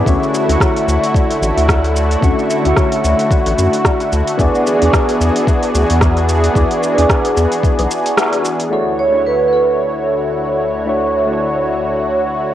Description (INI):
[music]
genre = sunset chillout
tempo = 111 BPM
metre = 4/4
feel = swing 57% on 16ths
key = D lydian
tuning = A4 = 439 Hz
[part]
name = soft electric-piano-like synth keys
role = accompaniment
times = 0.0-12.5 s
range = D3 to C#6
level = -19 LUFS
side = equal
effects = chorus, auto-pan, cassette tape, analog delay
[part]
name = lush unison pad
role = sustained chords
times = 0.0-12.5 s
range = D2 to C#5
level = -17 LUFS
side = equal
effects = chorus, cassette tape
[part]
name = round analog bass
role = bass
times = 0.0-7.9 s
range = A1 to F#2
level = -15 LUFS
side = equal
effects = none
[part]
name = kalimba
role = arpeggios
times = 0.1-8.4 s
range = B3 to E5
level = -24 LUFS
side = left 9 dB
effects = cassette tape, analog delay
[part]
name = deep house drum kit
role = drums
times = 0.1-8.7 s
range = hi-hat, rim click, shaker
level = -20 LUFS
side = equal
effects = cassette tape
[part]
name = electronic kick drum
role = drums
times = 0.1-7.8 s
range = none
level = -15 LUFS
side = equal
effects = cassette tape
[part]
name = vibraphone with medium hard mallets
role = melody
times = 8.7-10.6 s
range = A4 to C#5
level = -16 LUFS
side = right 3 dB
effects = cassette tape, analog delay
[sound]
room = wet spring reverb, RT60 1.4 s, digital ambience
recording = home recording on cassette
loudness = -12 LUFS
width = side -12 dB against mid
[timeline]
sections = 0.0-8.7 A section; 8.7-12.5 B section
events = band accent 8.2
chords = 0.1 Dmaj9; 4.4 E7; 8.7 Dmaj9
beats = | 0.07 0.61 1.15 1.69 | 2.23 2.77 3.31 3.85 | 4.39 4.93 5.47 6.01 | 6.55 7.09 7.63 8.17 | 8.71 9.25 9.79 10.34 | 10.88 11.42 11.96 12.50